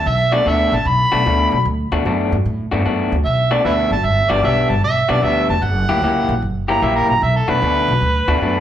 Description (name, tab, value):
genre	electric blues shuffle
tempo	151 BPM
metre	4/4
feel	swing 66% on 8ths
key	B minor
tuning	A4 = 440 Hz
part	overdriven harmonica	second line	0.0-8.6 s	A4 to B5	-18 LUFS	right 2 dB	slapback echo
part	upright bass	bass	0.0-8.6 s	E#1 to A2	-19 LUFS	equal	none
part	electric guitar through a small old amp	riff	0.3-8.6 s	B2 to G4	-20 LUFS	left 4 dB	slapback echo
room	little or no reverb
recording	live gig heard through the venue's PA, club reverb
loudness	-14 LUFS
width	side -10 dB against mid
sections	0.0-8.6 A section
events	harmonica solo 0.0-8.6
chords	0.0 Bm7; 4.0 Gmaj7; 5.6 F#7b9; 7.2 Bm7